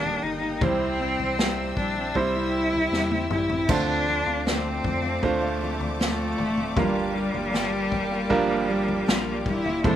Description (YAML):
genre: pop ballad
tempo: 78 BPM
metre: 4/4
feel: straight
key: unclear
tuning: A4 = 440 Hz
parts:
  - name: clear cello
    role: melody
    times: 0.0-10.0 s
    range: G3 to E4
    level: -27 LUFS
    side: left 1 dB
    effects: slapback echo
  - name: bright grand piano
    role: accompaniment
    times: 0.0-10.0 s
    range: G2 to C5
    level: -28 LUFS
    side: right 4 dB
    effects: none
  - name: warm studio string section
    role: sustained chords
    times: 0.0-10.0 s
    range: A4 to E6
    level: -35 LUFS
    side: left 1 dB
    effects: none
  - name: fingerpicked steel-string acoustic guitar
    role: arpeggios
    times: 0.0-10.0 s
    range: A2 to A4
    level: -32 LUFS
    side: left 4 dB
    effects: slapback echo
  - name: warm sub bass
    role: bass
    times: 0.0-10.0 s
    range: D1 to F2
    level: -35 LUFS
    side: left 1 dB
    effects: none
  - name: unplugged drum kit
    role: drums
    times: 0.0-10.0 s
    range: crash cymbal, kick drum, snare drum, toms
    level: -28 LUFS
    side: left 1 dB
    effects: none
room: little or no reverb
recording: none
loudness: -22 LUFS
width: side -10 dB against mid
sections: 0.0-3.7 A section; 3.7-10.0 B section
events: drum fill 2.9-3.7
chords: 0.0 Eb; 0.6 C; 3.7 Dm7; 6.8 Gm7